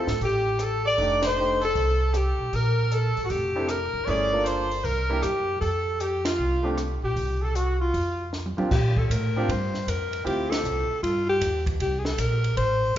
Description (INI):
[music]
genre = jazz, small-group swing and bop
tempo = 155 BPM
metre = 4/4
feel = swing 65% on 8ths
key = F major, Bb major from 8.7 s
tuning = A4 = 438 Hz
[part]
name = clear alto saxophone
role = melody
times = 0.0-12.9 s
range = F4 to D5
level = -26 LUFS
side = left 1 dB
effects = none
[part]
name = brilliant trumpet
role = second line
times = 0.0-8.3 s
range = F4 to D5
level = -32 LUFS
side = right 2 dB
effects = none
[part]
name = bright concert grand piano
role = accompaniment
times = 0.0-10.8 s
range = Bb2 to A4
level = -31 LUFS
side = right 1 dB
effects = none
[part]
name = upright bass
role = bass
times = 0.0-13.0 s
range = F1 to Bb2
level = -27 LUFS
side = equal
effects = none
[part]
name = compact cocktail drum kit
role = drums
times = 0.1-13.0 s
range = crash cymbal, hi-hat, kick drum, ride cymbal, rim click, snare drum, toms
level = -32 LUFS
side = equal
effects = none
[sound]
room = moderate recital hall reverb, RT60 1.6 s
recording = recorded in a church or concert hall, nothing above 7.5 kHz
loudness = -22 LUFS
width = side -11 dB against mid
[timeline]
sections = 0.0-8.7 A section; 8.7-13.0 B section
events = band accent 1.2, 6.2, 10.4; drum fill 8.3-8.7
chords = 0.0 Dsus4; 1.0 F13; 2.5 Bbmaj7(no3); 4.1 Gm9; 4.8 C7; 5.6 F; 7.2 Fadd9/C; 7.9 Fsus2; 8.7 Bbsus2; 10.3 Dm11; 11.0 Ebadd9; 11.8 C7(no3)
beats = 0.21 0.60 | 0.99 1.37 1.76 2.15 | 2.53 2.92 3.31 3.69 | 4.08 4.46 4.85 5.24 | 5.62 6.01 6.39 6.78 | 7.17 7.55 7.94 8.32 | 8.71 9.10 9.48 9.87 | 10.26 10.64 11.03 11.41 | 11.80 12.19 12.57 12.96